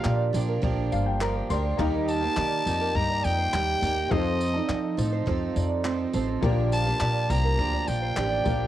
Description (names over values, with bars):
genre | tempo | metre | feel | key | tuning
acoustic pop | 103 BPM | 4/4 | straight | Bb major | A4 = 440 Hz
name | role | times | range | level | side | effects
growling trumpet | melody | 0.0-8.7 s | Eb5 to Bb5 | -28 LUFS | left 1 dB | cassette tape
clear upright piano | accompaniment | 0.0-8.7 s | Bb3 to C6 | -34 LUFS | left 9 dB | cassette tape, plate reverb
picked twelve-string acoustic guitar | accompaniment | 0.0-8.7 s | Bb2 to A4 | -30 LUFS | right 6 dB | cassette tape
fingerpicked old ladder-braced acoustic guitar | arpeggios | 0.0-8.6 s | Bb4 to Eb5 | -34 LUFS | right 6 dB | cassette tape
upright bass | bass | 0.0-8.7 s | G1 to F3 | -27 LUFS | left 1 dB | none
compact cocktail drum kit | drums | 0.0-8.6 s | handclaps, kick drum, tambourine | -34 LUFS | left 1 dB | cassette tape
room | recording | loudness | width
light reverb | home recording on cassette | -23 LUFS | side -12 dB against mid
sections
0.0-8.7 A section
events
upright piano fill 0.6-1.8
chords
0.0 Gm7/Bb; 1.8 Eb; 4.1 F7; 6.4 Bb6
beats
0.05 0.63 1.21 | 1.79 2.37 2.95 3.53 | 4.11 4.69 5.27 5.85 | 6.43 7.01 7.59 8.17